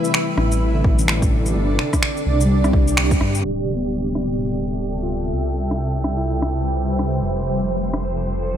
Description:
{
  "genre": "future garage",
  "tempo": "127 BPM",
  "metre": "4/4",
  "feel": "swing 60% on 16ths",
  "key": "D dorian",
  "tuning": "A4 = 441 Hz",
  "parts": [
    { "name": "muted felt-like synth keys", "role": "accompaniment", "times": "0.0-7.4 s", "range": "D3 to F4", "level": "-27 LUFS", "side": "left 1 dB", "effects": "chorus, sidechain pumping, dub echo" },
    { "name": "granular cloud pad", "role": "sustained chords", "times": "0.0-8.6 s", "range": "C3 to E5", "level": "-24 LUFS", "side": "right 1 dB", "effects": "built-in reverb, sidechain pumping" },
    { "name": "electronic shaker, finger snaps and rim click", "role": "drums", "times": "0.0-8.0 s", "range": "none", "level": "-23 LUFS", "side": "equal", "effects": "overdrive, studio ambience" },
    { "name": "swelling detuned saw bass", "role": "bass", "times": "0.4-8.6 s", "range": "D1 to G2", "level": "-22 LUFS", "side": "equal", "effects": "sidechain pumping" },
    { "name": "electronic kick drum", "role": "drums", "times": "0.8-3.2 s", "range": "none", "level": "-19 LUFS", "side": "equal", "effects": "overdrive, studio ambience" },
    { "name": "wind-like tuned noise texture", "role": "texture", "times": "4.5-8.6 s", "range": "G5", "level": "-32 LUFS", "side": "right 2 dB", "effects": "built-in reverb" }
  ],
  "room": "light reverb",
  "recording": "low-pass filter",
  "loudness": "-18 LUFS",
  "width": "side -10 dB against mid",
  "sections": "0.0-3.4 A section; 3.4-8.6 B section",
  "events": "band accent 3.0; filter sweep 3.4-8.6",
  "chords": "0.0 F6 (rootless); 1.6 Gsus4; 3.4 Dm9; 5.3 Cmaj7; 7.2 F6"
}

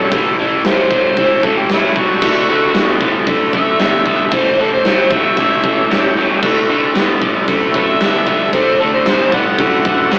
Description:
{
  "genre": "blues rock power trio and southern rock",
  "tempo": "114 BPM",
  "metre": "4/4",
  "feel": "straight",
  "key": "unclear",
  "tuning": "A4 = 440 Hz",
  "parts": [
    { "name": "overdriven harmonica", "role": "melody", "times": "0.0-10.2 s", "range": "E4 to F#5", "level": "-19 LUFS", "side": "equal", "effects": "none" },
    { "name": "overdriven tonewheel organ", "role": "sustained chords", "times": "0.0-10.2 s", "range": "A3 to G4", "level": "-25 LUFS", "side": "equal", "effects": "chorus vibrato, slow rotary speaker" },
    { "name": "crunchy overdriven guitar", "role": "riff", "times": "0.0-10.2 s", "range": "A2 to B3", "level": "-17 LUFS", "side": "equal", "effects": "none" },
    { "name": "vintage muted fingered electric bass", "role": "bass", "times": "0.0-10.2 s", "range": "A1 to A2", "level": "-32 LUFS", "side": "equal", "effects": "none" },
    { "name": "big rock drum kit", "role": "drums", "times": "0.1-10.2 s", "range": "crash cymbal, hi-hat, kick drum, snare drum", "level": "-20 LUFS", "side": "equal", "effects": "none" }
  ],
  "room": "moderate studio ambience, RT60 0.5 s",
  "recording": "rough rehearsal-room recording, tube saturation, AM radio sound",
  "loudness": "-14 LUFS",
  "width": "mono",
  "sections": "0.0-10.2 A section",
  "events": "harmonica solo 0.0-10.2",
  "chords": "0.0 A7; 2.2 D7; 4.3 A7; 6.4 D7"
}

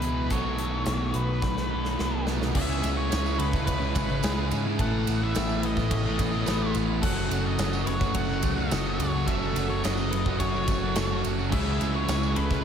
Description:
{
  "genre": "rock, shoegaze and dream pop",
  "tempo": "107 BPM",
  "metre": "4/4",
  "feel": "straight",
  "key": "unclear",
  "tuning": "A4 = 441 Hz",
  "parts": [
    { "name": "octave-fuzz lead guitar", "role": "melody", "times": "0.0-12.6 s", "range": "B4 to F#5", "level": "-33 LUFS", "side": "left 1 dB", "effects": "distortion, ping-pong delay" },
    { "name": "direct-recorded clean electric guitar", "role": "arpeggios", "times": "0.0-12.6 s", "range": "G#4 to C#5", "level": "-40 LUFS", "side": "left 6 dB", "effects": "lush chorus, ping-pong delay" },
    { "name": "crunchy overdriven guitar", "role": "riff", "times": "0.0-2.5, 11.5-12.6 s", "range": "B2 to A4", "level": "-35 LUFS", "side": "equal", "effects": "none" },
    { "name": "overdriven electric guitar", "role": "riff", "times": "0.0-12.6 s", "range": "E2 to F#4", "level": "-32 LUFS", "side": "right 10 dB", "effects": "reverse reverb" },
    { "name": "thick fuzz guitar", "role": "riff", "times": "0.0-12.6 s", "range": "E2 to C#4", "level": "-30 LUFS", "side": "left 6 dB", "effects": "distortion, lush chorus" },
    { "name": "deep dub picked electric bass", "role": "bass", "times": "0.0-12.6 s", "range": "F#1 to G#2", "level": "-30 LUFS", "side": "equal", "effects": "none" },
    { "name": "gated 80s drum kit", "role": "drums", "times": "0.0-12.6 s", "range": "crash cymbal, hi-hat, kick drum, ride cymbal, snare drum", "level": "-31 LUFS", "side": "equal", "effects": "none" },
    { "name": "pipe organ, full organ", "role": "sustained chords", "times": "2.6-12.6 s", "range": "E4 to C#6", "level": "-39 LUFS", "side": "right 3 dB", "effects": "none" },
    { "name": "tambourine", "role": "percussion", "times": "2.8-12.4 s", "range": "none", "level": "-45 LUFS", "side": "right 11 dB", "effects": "none" }
  ],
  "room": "moderate plate reverb, RT60 1.7 s, small room ambience",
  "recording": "dreamy mix soaked in reverb",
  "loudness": "-24 LUFS",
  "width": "side -8 dB against mid",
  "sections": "0.0-2.6 A section; 2.6-12.6 B section",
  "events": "drum fill 1.4-2.6",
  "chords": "0.3 B7; 2.6 C#m7; 4.8 Asus2; 7.0 F#m; 11.5 C#m7"
}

